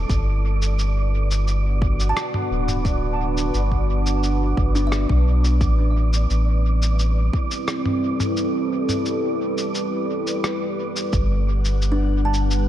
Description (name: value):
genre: ambient dub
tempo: 87 BPM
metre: 4/4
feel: straight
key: unclear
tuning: A4 = 440 Hz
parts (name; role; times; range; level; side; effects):
- deep dark ambient pad; sustained chords; 0.0-12.7 s; G3 to B4; -25 LUFS; right 1 dB; chorus, built-in reverb
- kalimba; arpeggios; 0.0-12.7 s; D4 to A5; -29 LUFS; left 1 dB; tape echo
- soft dub sub bass; bass; 0.0-12.7 s; D1 to B1; -19 LUFS; equal; none
- wind-like tuned noise texture; texture; 0.0-12.7 s; D5 to F#5; -33 LUFS; right 7 dB; built-in reverb
- electronic kick drum; drums; 0.1-11.3 s; none; -23 LUFS; equal; none
- lo-fi sampler-style drum kit; drums; 0.1-12.6 s; cabasa, rim click, toms; -29 LUFS; equal; dub echo
room: light reverb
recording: none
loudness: -19 LUFS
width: side -12 dB against mid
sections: 0.0-12.7 A section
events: break 8.4-11.1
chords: 0.1 Gmaj7; 5.6 Am9; 11.1 Gmaj7